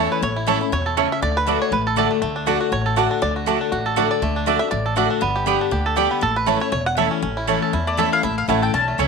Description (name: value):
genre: bluegrass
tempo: 239 BPM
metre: 4/4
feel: swing 56% on 8ths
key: A mixolydian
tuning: A4 = 441 Hz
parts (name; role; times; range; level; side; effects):
- bluegrass banjo; melody; 0.0-9.1 s; A3 to F#5; -23 LUFS; right 4 dB; slapback echo
- picked steel-string acoustic guitar; accompaniment; 0.0-9.1 s; E2 to G4; -24 LUFS; left 15 dB; none
- mandolin; stabs; 0.0-9.1 s; A3 to A5; -23 LUFS; right 14 dB; slapback echo
- upright bass; bass; 0.0-9.1 s; E1 to E2; -26 LUFS; left 1 dB; none
- mandolin; melody; 7.9-9.1 s; D5 to A5; -22 LUFS; left 5 dB; none
room: light reverb, studio reverb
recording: 1960s-style stereo with parts hard left and right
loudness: -18 LUFS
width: side -4 dB against mid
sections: 0.0-7.2 A section; 7.2-9.1 B section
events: five-string banjo solo 0.0-7.2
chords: 0.0 A; 1.2 D; 5.2 G; 6.2 A